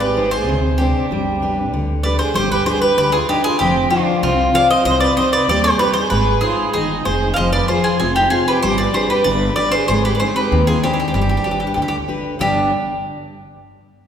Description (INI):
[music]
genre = greek folk, Greek bouzouki band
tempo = 96 BPM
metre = 2/4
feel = straight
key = G phrygian dominant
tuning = A4 = 441 Hz
[part]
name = Greek bouzouki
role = melody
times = 0.0-12.7 s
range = F4 to F5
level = -18 LUFS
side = equal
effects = none
[part]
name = rich violin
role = second line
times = 0.0-12.7 s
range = C4 to D5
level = -23 LUFS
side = right 4 dB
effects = none
[part]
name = picked steel-string acoustic guitar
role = accompaniment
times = 0.0-12.7 s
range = G2 to C5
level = -21 LUFS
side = left 3 dB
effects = none
[part]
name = upright bass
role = bass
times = 0.0-12.7 s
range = F1 to Eb2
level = -22 LUFS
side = right 1 dB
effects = none
[sound]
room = wet concert hall reverb, RT60 2.2 s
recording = recorded in a church or concert hall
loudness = -14 LUFS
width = side -8 dB against mid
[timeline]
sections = 0.0-2.4 A section; 2.4-12.4 B section; 12.4-13.7 C section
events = none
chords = 0.0 Ab; 1.1 G; 3.6 Fm; 4.9 Cm; 6.1 Ab; 7.4 Fm; 8.6 G; 9.9 Ab; 11.2 G